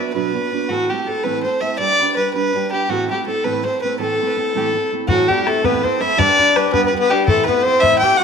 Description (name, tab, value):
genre	celtic folk, Celtic jig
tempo	109 BPM (dotted quarters)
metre	6/8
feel	straight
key	A dorian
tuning	A4 = 436 Hz
part	warm fiddle	melody	0.0-8.2 s	F#4 to G5	-16 LUFS	left 1 dB	slapback echo
part	fingerpicked steel-string acoustic guitar	accompaniment	0.0-8.2 s	A2 to C5	-23 LUFS	right 11 dB	none
part	warm tenor saxophone	second line	5.1-8.2 s	F#3 to G4	-20 LUFS	left 10 dB	none
part	bodhran	percussion	5.1-8.1 s	none	-22 LUFS	left 4 dB	none
room	wet echo chamber reverb, RT60 1.6 s, studio ambience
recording	1960s-style stereo with parts hard left and right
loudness	-15 LUFS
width	side -6 dB against mid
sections	0.0-5.1 A section; 5.1-8.2 A section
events	none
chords	0.0 Bm; 0.7 Am; 1.8 G; 2.9 Am; 6.2 G; 7.3 Am